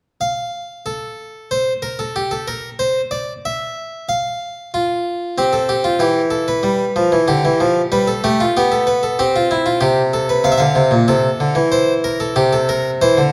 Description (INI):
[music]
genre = classical, baroque-style two-part invention for harpsichord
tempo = 94 BPM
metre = 4/4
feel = straight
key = unclear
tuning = A4 = 438 Hz
[part]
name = harpsichord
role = solo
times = 0.2-13.3 s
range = Bb2 to F5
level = -17 LUFS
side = equal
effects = none
[sound]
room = moderate recital hall reverb, RT60 1.4 s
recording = dark, warm production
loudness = -17 LUFS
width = mono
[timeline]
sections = 0.2-13.3 A section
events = none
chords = 0.2 N.C.; 5.4 C; 6.6 G; 9.2 C5; 10.4 F; 11.7 C/E